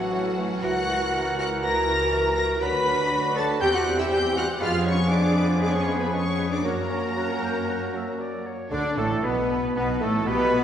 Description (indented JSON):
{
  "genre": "classical, dramatic, fast romantic movement for symphony orchestra",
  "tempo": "118 BPM",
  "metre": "4/4",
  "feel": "straight",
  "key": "unclear",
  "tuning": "A4 = 440 Hz",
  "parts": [
    { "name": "warm symphonic violin section", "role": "melody", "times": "0.0-10.6 s", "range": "A3 to B6", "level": "-32 LUFS", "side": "left 2 dB", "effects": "none" },
    { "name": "clear studio violin section", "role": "second line", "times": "0.0-10.6 s", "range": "F#4 to B5", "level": "-36 LUFS", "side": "left 1 dB", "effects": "none" },
    { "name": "mellow hollow concert flute", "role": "second line", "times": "0.0-10.6 s", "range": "F#4 to D6", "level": "-33 LUFS", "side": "left 2 dB", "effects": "none" },
    { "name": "warm clarinet", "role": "second line", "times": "0.0-10.6 s", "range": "A3 to B5", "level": "-33 LUFS", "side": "left 1 dB", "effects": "none" },
    { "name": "clear symphonic viola section", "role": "accompaniment", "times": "0.0-10.6 s", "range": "A3 to A4", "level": "-33 LUFS", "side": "right 1 dB", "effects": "none" },
    { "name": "clear trombone section", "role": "sustained chords", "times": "0.0-10.6 s", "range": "A2 to D4", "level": "-35 LUFS", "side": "right 1 dB", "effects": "none" },
    { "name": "mellow French horn section", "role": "sustained chords", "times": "0.0-10.6 s", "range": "F#3 to B4", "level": "-30 LUFS", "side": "left 1 dB", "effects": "none" },
    { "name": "clear trumpet section", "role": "stabs", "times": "0.0-10.6 s", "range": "F#4 to D5", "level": "-31 LUFS", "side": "equal", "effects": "none" },
    { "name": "warm symphonic cello section", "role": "bass", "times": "0.0-10.6 s", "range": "F#3 to B4", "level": "-31 LUFS", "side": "right 2 dB", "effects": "none" },
    { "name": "warm symphonic double bass section", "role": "bass", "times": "0.0-10.6 s", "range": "A1 to F#2", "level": "-29 LUFS", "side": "equal", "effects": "none" },
    { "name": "warm oboe", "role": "second line", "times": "0.1-10.6 s", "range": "B3 to G5", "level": "-37 LUFS", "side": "equal", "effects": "none" },
    { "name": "mellow bassoon", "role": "accompaniment", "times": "0.1-10.6 s", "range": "A2 to Ab3", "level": "-33 LUFS", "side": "equal", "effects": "none" }
  ],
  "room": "wet scoring stage reverb, RT60 1.9 s",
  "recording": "heard from further back in the room, nothing above 10.9 kHz",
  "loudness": "-22 LUFS",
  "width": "side -9 dB against mid",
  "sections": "0.0-8.7 A section; 8.7-10.6 B section",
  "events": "none",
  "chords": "0.0 A; 0.6 F#7/C#; 2.6 Bm/D; 3.6 C/E; 4.6 Fdim7; 6.7 F#; 8.7 Bm; 9.8 B7"
}